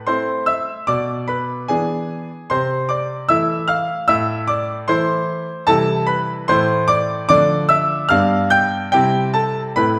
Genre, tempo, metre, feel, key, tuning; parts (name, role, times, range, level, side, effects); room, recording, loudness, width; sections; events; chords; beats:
classical-period piano sonatina; 74 BPM; 2/4; rubato; A minor, C major from 5.7 s; A4 = 440 Hz
clear grand piano; solo; 0.0-10.0 s; G2 to G6; -18 LUFS; equal
wet recital hall reverb, RT60 1.4 s; -18 LUFS; mono
0.0-10.0 A section
0.0 Am; 0.9 E7/B; 2.5 Am/C; 4.1 Am; 5.7 C; 6.5 Am; 7.3 Dm; 8.1 G7; 8.9 C
0.07 | 0.88 1.69 | 2.50 3.30 | 4.09 4.88 | 5.67 6.49 | 7.29 8.10 | 8.93 9.77